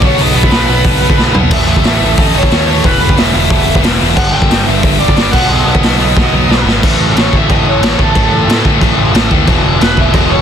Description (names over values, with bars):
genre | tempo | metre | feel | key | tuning
punk rock | 181 BPM | 4/4 | straight | unclear | A4 = 442 Hz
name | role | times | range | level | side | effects
overdriven electric guitar | melody | 0.0-10.4 s | A4 to G5 | -17 LUFS | right 2 dB | tape echo
distorted electric guitar | riff | 0.0-10.4 s | E2 to B3 | -17 LUFS | right 15 dB | distortion
tight distorted guitar | riff | 0.0-10.4 s | E2 to B3 | -15 LUFS | left 16 dB | distortion
fuzz picked electric bass | bass | 0.0-10.4 s | E1 to A2 | -16 LUFS | equal | overdrive
raw garage drum kit | drums | 0.0-10.2 s | crash cymbal, hi-hat, kick drum, snare drum, toms | -12 LUFS | equal | none
room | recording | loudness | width
little or no reverb | dense, heavily limited modern master | -8 LUFS | side -8 dB against mid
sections
0.0-6.8 A section; 6.8-10.4 B section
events
drum fill 1.2-1.5, 6.2-6.8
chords
0.0 B5; 1.5 A; 2.8 E5; 4.2 G5; 5.3 B; 6.8 A5; 9.5 E5